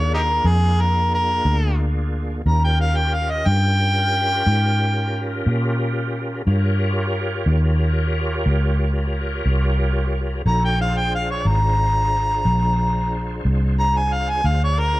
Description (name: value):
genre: slow blues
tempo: 60 BPM (dotted quarters)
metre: 12/8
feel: straight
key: unclear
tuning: A4 = 443 Hz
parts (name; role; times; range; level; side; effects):
- warm harmonica; melody; 0.0-15.0 s; Eb4 to Bb5; -21 LUFS; equal; overdrive
- bright tonewheel organ; sustained chords; 0.0-15.0 s; Bb3 to Db5; -27 LUFS; equal; slow rotary speaker, chorus vibrato
- vintage muted fingered electric bass; bass; 0.0-15.0 s; Ab1 to Bb2; -19 LUFS; equal; none
room: light reverb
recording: none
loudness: -17 LUFS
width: side -17 dB against mid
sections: 0.0-15.0 A section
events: harmonica solo 0.0-15.0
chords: 0.0 Bb7; 2.5 Eb7; 10.5 Bb7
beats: 0.46 1.46 | 2.46 3.46 4.46 5.46 | 6.46 7.46 8.46 9.46 | 10.46 11.45 12.45 13.45 | 14.45